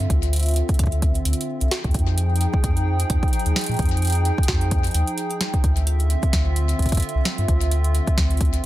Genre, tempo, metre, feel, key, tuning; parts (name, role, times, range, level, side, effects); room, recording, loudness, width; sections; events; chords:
IDM; 130 BPM; 4/4; swing 56% on 16ths; D minor; A4 = 439 Hz
hollow soft pad; sustained chords; 0.0-8.7 s; D3 to G5; -27 LUFS; equal; chorus, vintage 12-bit sampler grit
round analog bass; bass; 0.0-8.7 s; C2 to Bb2; -20 LUFS; equal
booming analog drum machine; drums; 0.0-8.6 s; hi-hat, snare drum; -27 LUFS; right 1 dB; ping-pong delay
electronic kick drum; drums; 0.1-8.5 s; -21 LUFS; equal
digital ambience; dense, heavily limited modern master; -18 LUFS; side -15 dB against mid
0.0-8.7 A section
0.0 Dm9; 1.7 Fm9; 5.6 Dm9